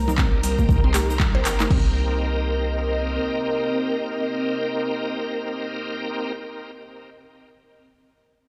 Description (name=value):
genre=afro house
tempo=118 BPM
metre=4/4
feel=swing 60% on 16ths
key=C minor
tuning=A4 = 440 Hz
part: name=ethereal airy pad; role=sustained chords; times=0.0-6.3 s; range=C4 to Bb5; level=-30 LUFS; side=equal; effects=ensemble chorus, built-in reverb, tremolo, sidechain pumping
part: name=warm 808-style bass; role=bass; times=0.0-3.2 s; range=G1 to C2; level=-26 LUFS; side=equal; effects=sidechain pumping
part: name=mallet-like synth pluck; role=arpeggios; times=0.1-1.9 s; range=G3 to C5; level=-32 LUFS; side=equal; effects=chorus, sidechain pumping, digital delay
part: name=bright tonewheel organ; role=stabs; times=0.1-6.3 s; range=Bb3 to D5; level=-31 LUFS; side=equal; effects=chorus vibrato, slow rotary speaker, sidechain pumping, digital delay
part: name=congas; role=percussion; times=0.1-1.7 s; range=none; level=-32 LUFS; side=equal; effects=none
part: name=egg shaker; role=percussion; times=0.1-1.7 s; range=none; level=-40 LUFS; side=equal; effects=none
part: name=afro-pop drum kit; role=drums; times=0.2-1.8 s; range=crash cymbal, handclaps, hi-hat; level=-30 LUFS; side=equal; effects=studio reverb
part: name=electronic kick drum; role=drums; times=0.2-1.8 s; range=none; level=-22 LUFS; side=equal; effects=studio reverb
room=light reverb, digital ambience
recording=played on a big sound system in a bare room, stone room reverb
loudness=-23 LUFS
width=mono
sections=0.0-1.7 A section; 1.7-5.8 B section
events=drop 0.0-1.7; band accent 1.2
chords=0.0 Cm7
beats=0.18 0.69 1.20 | 1.71 2.21 2.72 3.23 | 3.74 4.25 4.76 5.26